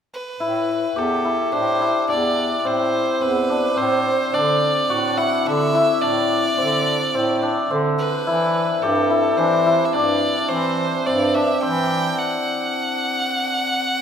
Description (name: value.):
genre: contemporary instrumental, chamber music in an uneven meter.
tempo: 107 BPM.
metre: 7/4.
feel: straight.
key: C lydian.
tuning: A4 = 442 Hz.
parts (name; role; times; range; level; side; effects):
clear violin; melody; 0.1-14.0 s; A4 to G5; -23 LUFS; right 2 dB; none.
hammered dulcimer; arpeggios; 0.4-14.0 s; C4 to G4; -20 LUFS; left 2 dB; none.
clear bass clarinet; bass; 0.4-12.1 s; E2 to E3; -24 LUFS; right 2 dB; none.
room: wet scoring stage reverb, RT60 1.8 s.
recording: minimal, uncompressed stereo recording.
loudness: -17 LUFS.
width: side -8 dB against mid.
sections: 0.4-14.0 A section.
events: stop 12.2-14.0.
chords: 0.4 Am7; 4.3 D9; 8.3 Cadd9; 12.2 N.C..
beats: | 0.41 0.97 1.53 2.09 2.65 3.22 3.78 | 4.34 4.90 5.46 6.02 6.58 7.14 7.71 | 8.27 8.83 9.39 9.95 10.51 11.07 11.63 | 12.19 12.75 13.31 13.87.